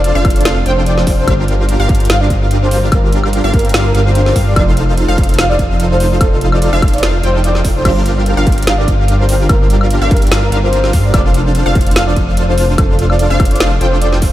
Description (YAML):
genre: future bass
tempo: 146 BPM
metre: 4/4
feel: swing 54% on 16ths, half-time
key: G minor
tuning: A4 = 440 Hz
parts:
  - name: breathy flute-like synth lead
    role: melody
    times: 0.0-14.1 s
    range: A4 to F5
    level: -19 LUFS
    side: equal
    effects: lush chorus, cassette tape, sidechain pumping, tape echo
  - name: wide unison pluck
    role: arpeggios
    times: 0.0-14.3 s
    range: F5 to G5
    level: -24 LUFS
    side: equal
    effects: sidechain pumping, analog delay
  - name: dense compressed supersaw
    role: riff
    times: 0.0-14.3 s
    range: D4 to G5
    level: -18 LUFS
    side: equal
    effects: sidechain pumping
  - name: wide detuned saw bass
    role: bass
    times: 0.0-14.3 s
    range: F1 to G2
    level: -14 LUFS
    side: equal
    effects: chorus, sidechain pumping
  - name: trap drum kit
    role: drums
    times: 0.0-14.3 s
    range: crash cymbal, hi-hat, snare drum, woodblock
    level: -20 LUFS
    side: equal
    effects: studio reverb
  - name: electronic kick drum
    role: drums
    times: 0.2-14.3 s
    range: none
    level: -14 LUFS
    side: equal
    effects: distortion, studio reverb
room: light reverb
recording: none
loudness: -10 LUFS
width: side -14 dB against mid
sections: 0.0-14.3 A section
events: none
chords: 0.0 Dm7/F; 1.3 Gm7; 4.6 F7; 7.9 Gm7; 11.1 Dm7/F